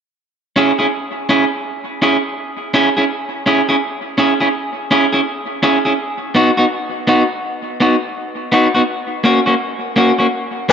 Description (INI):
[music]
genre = reggae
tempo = 83 BPM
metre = 4/4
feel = swing 62% on 16ths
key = C# dorian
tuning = A4 = 440 Hz
[part]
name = electric guitar at the edge of break-up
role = accompaniment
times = 0.6-10.7 s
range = A#3 to G#4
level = -14 LUFS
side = equal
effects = dub echo
[sound]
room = moderate spring reverb, RT60 2.0 s, small room ambience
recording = nothing above 7.8 kHz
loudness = -13 LUFS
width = side -7 dB against mid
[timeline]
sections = 0.2-10.7 A section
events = none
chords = 0.2 C#m; 6.0 B; 8.9 F#